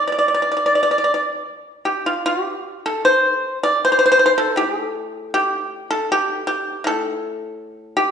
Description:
chinese traditional, Chinese solo plucked strings; 71-80 BPM; 4/4; rubato; A4 = 439 Hz
pipa; solo; 0.0-8.1 s; A2 to D5; -17 LUFS; equal
wet recital hall reverb, RT60 1.4 s; recorded in a church or concert hall, nothing above 10.6 kHz; -17 LUFS; side -7 dB against mid
0.0-2.2 A section; 2.2-8.1 B section

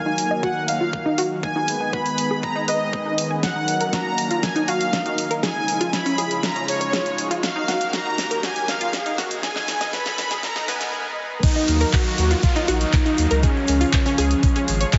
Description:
progressive house; 120 BPM; 4/4; straight; Eb minor; A4 = 440 Hz
soft supersaw; melody; 0.0-14.6 s; Cb4 to Cb6; -27 LUFS; equal; sidechain pumping, delay
lush unison pad; sustained chords; 0.0-15.0 s; Db3 to F5; -31 LUFS; equal; chorus, sidechain pumping
riser, swell and downlifter; sound effects; 0.0-15.0 s; -35 LUFS; equal
unison pluck; arpeggios; 0.1-15.0 s; Db4 to Db6; -29 LUFS; equal; vintage 12-bit sampler grit, sidechain pumping, delay
big-room dance drum kit; drums; 0.2-15.0 s; crash cymbal, handclaps, hi-hat, snare drum; -29 LUFS; equal
electronic kick drum; drums; 0.4-15.0 s; -23 LUFS; equal; high-pass filter on kick
compact cocktail drum kit; drums; 11.4-15.0 s; hi-hat, snare drum; -43 LUFS; equal
egg shaker; percussion; 11.4-15.0 s; -40 LUFS; equal
saturated sub bass; bass; 11.7-14.8 s; Ab1 to Eb2; -23 LUFS; equal; sidechain pumping
moderate lush hall reverb, RT60 2.7 s; heavily compressed radio sound, multiband compression, high-pass filter, nothing above 7.7 kHz; -22 LUFS; mono
0.0-11.4 A section; 11.4-15.0 B section
build-up 0.0-11.4; filter sweep on synth pluck 0.0-11.4; filter sweep on analog synth pad 0.0-11.4; filter sweep 0.0-11.4; drum fill 3.4-10.9; swell 10.4-11.4; drop 11.4-15.0
0.0 Ebmadd9; 1.4 Abm; 3.4 Ebmadd9; 5.4 Db; 7.4 Ebmadd9; 9.4 Abm; 11.4 Ebmadd9; 13.4 Db

